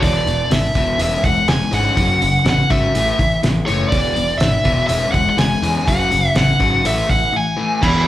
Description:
indie rock; 123 BPM; 4/4; straight; E mixolydian; A4 = 439 Hz
biting lead guitar; melody; 0.0-8.1 s; E4 to G#5; -18 LUFS; equal; overdrive, slapback echo
overdriven electric guitar; riff; 0.0-8.1 s; E2 to C#4; -20 LUFS; left 3 dB
fuzz picked electric bass; bass; 0.0-8.0 s; E1 to E2; -21 LUFS; right 1 dB; overdrive
cloth-damped thuddy drum kit; drums; 0.0-7.9 s; crash cymbal, hi-hat, kick drum, snare drum; -21 LUFS; equal
glockenspiel with hard plastic mallets; second line; 7.8-8.1 s; B5; -27 LUFS; right 2 dB
crunchy overdriven guitar; riff; 7.8-8.1 s; E2; -25 LUFS; right 4 dB; wide subtle chorus
little or no reverb; live gig heard through the venue's PA, club reverb; -14 LUFS; side -13 dB against mid
0.0-7.8 A section
break 7.3-7.8
0.0 E7; 1.0 C#m/E; 2.0 F#m; 2.9 A5; 3.9 E7; 4.9 C#m/E; 5.9 F#m; 6.8 A5

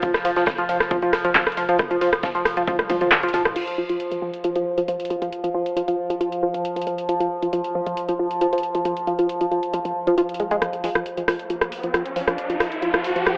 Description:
driving peak-time techno; 136 BPM; 4/4; straight; A4 = 442 Hz
tight sequenced synth; riff; 0.0-13.3 s; F3 to Ab3; -26 LUFS; equal; chorus, tube saturation, cassette tape, sidechain pumping, tape echo
warm sub bass; bass; 0.0-3.6 s; F1; -49 LUFS; equal; overdrive, sidechain pumping, low-pass filter
overtone-sweeping drone; drone; 0.0-13.4 s; F3; -30 LUFS; equal; chorus, built-in reverb, sidechain pumping
electronic kick drum; drums; 0.0-2.8 s; -31 LUFS; equal; overdrive
huge arena drum kit; drums; 0.0-3.4 s; hi-hat, snare drum; -40 LUFS; equal
punchy analog drum machine; drums; 0.0-13.4 s; crash cymbal, handclaps, hi-hat, ride cymbal, rim click, toms; -25 LUFS; equal; overdrive
riser; sound effects; 11.5-13.4 s; -30 LUFS; equal
moderate plate reverb, RT60 1.8 s, digital ambience; telephone sound; -23 LUFS; mono
0.0-3.6 A section; 3.6-10.6 B section; 10.6-13.4 C section
drop 0.0-3.6; drum fill 2.7-3.6; kick drops out 3.1-3.6; filter sweep on synth arpeggio sound 3.6-10.6, 10.6-13.4; build-up 10.6-13.4; riser 11.5-13.4

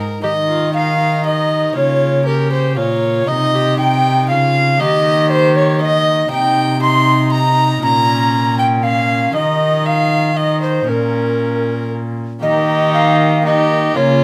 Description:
classical, renaissance-style consort dance; 118 BPM; 3/4; straight; A4 = 438 Hz
warm violin; second line; 0.0-14.2 s; F4 to C6; -22 LUFS; equal
concert harp; accompaniment; 0.0-14.2 s; Ab2 to Bb4; -27 LUFS; equal
mellow hollow tenor recorder; melody; 0.2-14.2 s; Bb4 to C6; -19 LUFS; equal
warm viola; accompaniment; 0.2-14.2 s; Bb3 to G4; -24 LUFS; equal
warm cello; bass; 0.2-14.2 s; Bb2 to Eb3; -20 LUFS; equal
moderate stone room reverb, RT60 1.2 s; close, detailed microphones; -15 LUFS; mono
0.2-12.4 A section; 12.4-14.2 A section
0.2 Eb; 1.8 Bbm/Db; 3.3 Cm; 4.8 Eb; 6.3 Cm; 7.8 Bbm; 9.3 Eb; 10.9 Bbm; 12.4 Eb

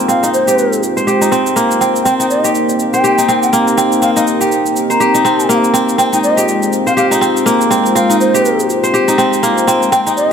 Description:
afro house; 122 BPM; 4/4; swing 58% on 16ths; A4 = 440 Hz
warm analog pad; sustained chords; 0.0-10.3 s; Ab3 to C5; -17 LUFS; left 2 dB; chorus
kora; arpeggios; 0.0-10.3 s; Bb3 to C5; -13 LUFS; right 1 dB; low-pass filter, ping-pong delay
breathy bass bansuri; melody; 0.1-10.3 s; C5 to Bb5; -16 LUFS; left 1 dB; ping-pong delay
cabasa; drums; 0.1-10.3 s; -22 LUFS; right 3 dB; overdrive
moderate lush hall reverb, RT60 1.6 s; -10 LUFS; side -7 dB against mid
0.0-10.3 A section
0.0 Abmaj13; 2.1 Cm7; 6.0 Abmaj13

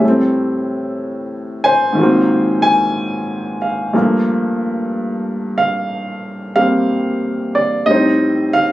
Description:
solo jazz; 61 BPM; 4/4; swing 68% on 8ths, rubato; G minor; A4 = 440 Hz
warm baby grand piano; solo; 0.0-8.7 s; G2 to Ab5; -14 LUFS; equal
moderate club reverb, RT60 0.5 s; recorded on a phone in the room, studio ambience, compression; -14 LUFS; side -15 dB against mid
0.0-8.7 A section
0.0 Am7; 2.0 Ab13; 3.9 Gm9; 7.9 Am7b5

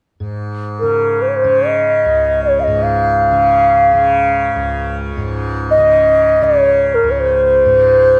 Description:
indian classical, Hindustani; free time; Db raga yaman; A4 = 440 Hz
tanpura; drone; 0.2-8.2 s; Db2 to Db3; -22 LUFS; equal
mellow bansuri; melody; 0.8-8.2 s; Bb4 to F5; -13 LUFS; equal
light reverb; close, detailed microphones; -13 LUFS; mono
0.2-8.2 A section

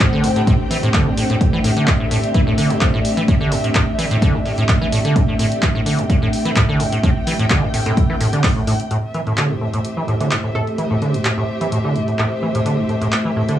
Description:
acid house; 128 BPM; 4/4; straight; A minor; A4 = 439 Hz
dark analog pad; sustained chords; 0.0-13.6 s; A3 to E5; -22 LUFS; left 1 dB; chorus, sidechain pumping, cassette tape
liquid acid bass; riff; 0.0-13.6 s; G2 to E3; -19 LUFS; right 1 dB; chorus, tube saturation, cassette tape, tape echo
electronic kick drum; drums; 0.0-8.5 s; -18 LUFS; equal; overdrive, cassette tape
punchy analog drum machine; drums; 0.0-13.6 s; handclaps, hi-hat; -22 LUFS; equal; overdrive, cassette tape
rich chamber string section; texture; 0.0-13.6 s; A3 to G5; -26 LUFS; equal; sidechain pumping, cassette tape
band-passed chord stab; stabs; 0.4-11.7 s; A3 to E4; -30 LUFS; right 7 dB; phaser, wide subtle chorus, cassette tape, tape echo
glassy wavetable pluck; melody; 10.6-11.2 s; A4; -29 LUFS; right 2 dB; chorus, cassette tape, tape echo
moderate booth ambience, RT60 0.3 s; home recording on cassette, small room ambience; -15 LUFS; side -11 dB against mid
0.0-8.9 A section; 8.9-13.6 B section
band accent 8.4
0.0 Am

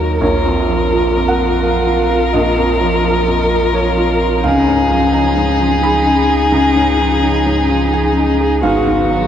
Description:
neoclassical piano and strings; 85 BPM; 3/4; rubato; A4 = 440 Hz
rich violin; melody; 0.0-9.3 s; Gb4 to Bb4; -17 LUFS; left 2 dB
felt-muted upright piano; accompaniment; 0.0-9.3 s; Bb1 to Cb6; -17 LUFS; right 2 dB
rich viola; accompaniment; 0.0-9.3 s; Cb4 to Gb4; -21 LUFS; right 1 dB
vibraphone with soft mallets; arpeggios; 0.0-9.3 s; Db4 to Bb5; -20 LUFS; left 4 dB
pure sine sub bass; bass; 0.0-9.3 s; Ab1 to Eb2; -20 LUFS; equal
wet church reverb, RT60 3.3 s; recorded in a church or concert hall; -12 LUFS; side -9 dB against mid
0.0-9.3 A section
0.2 Bbm; 4.4 Dbadd9; 8.6 Abm7

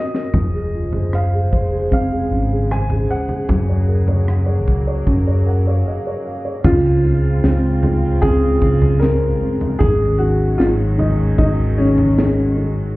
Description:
pop ballad; 76 BPM; 4/4; straight; Db major; A4 = 439 Hz
clear concert grand piano; melody; 0.0-12.5 s; Db4 to Ab5; -21 LUFS; equal
felt-muted upright piano; accompaniment; 0.0-13.0 s; Db3 to Gb5; -22 LUFS; right 1 dB
modern studio drum kit; drums; 0.1-12.4 s; crash cymbal, kick drum, rim click, snare drum, toms; -20 LUFS; equal
warm studio string section; sustained chords; 0.3-13.0 s; Db3 to C5; -24 LUFS; equal
mellow fretless electric bass; bass; 0.3-12.9 s; F1 to Db2; -18 LUFS; equal
light reverb, small room ambience; heard muffled through a wall, club reverb, EQ; -14 LUFS; side -19 dB against mid
0.0-6.7 A section; 6.7-13.0 B section
drum fill 0.0-0.3; felt piano fill 5.1-6.7; break 5.9-6.7
0.3 Dbmaj7/F; 3.5 Gbmaj7; 6.7 Dbmaj7; 9.8 Ab7sus4

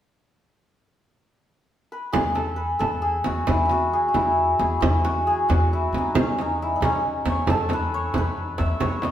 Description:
Persian modal ensemble; 90 BPM (dotted quarters); 6/8; straight; E dastgah mahur; A4 = 436 Hz
santur; melody; 1.9-9.1 s; C#4 to E5; -22 LUFS; left 1 dB
upright bass; bass; 2.1-9.1 s; E2; -27 LUFS; equal
frame drum; percussion; 2.1-9.1 s; -26 LUFS; right 2 dB
tombak; percussion; 7.5-9.1 s; -30 LUFS; equal
wet stone room reverb, RT60 1.3 s; band playing live in one room; -20 LUFS; side -11 dB against mid
0.8-2.1 A section; 2.1-9.1 B section

